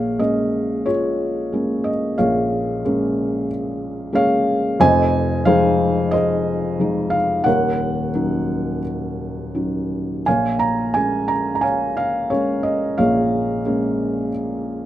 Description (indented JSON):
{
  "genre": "classical, lyrical solo piano",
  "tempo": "82-94 BPM",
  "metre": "4/4",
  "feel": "rubato",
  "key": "Bb minor",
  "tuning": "A4 = 440 Hz",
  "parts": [
    { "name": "felt-muted upright piano", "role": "solo", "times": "0.0-14.9 s", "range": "Eb1 to Bb5", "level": "-18 LUFS", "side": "equal", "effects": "none" }
  ],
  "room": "light reverb",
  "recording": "close, detailed microphones",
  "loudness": "-17 LUFS",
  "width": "side -12 dB against mid",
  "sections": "0.0-14.9 A section",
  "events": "none",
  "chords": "0.0 Bbm7; 4.8 Fm7; 7.5 Ebm7; 10.3 Bbm7"
}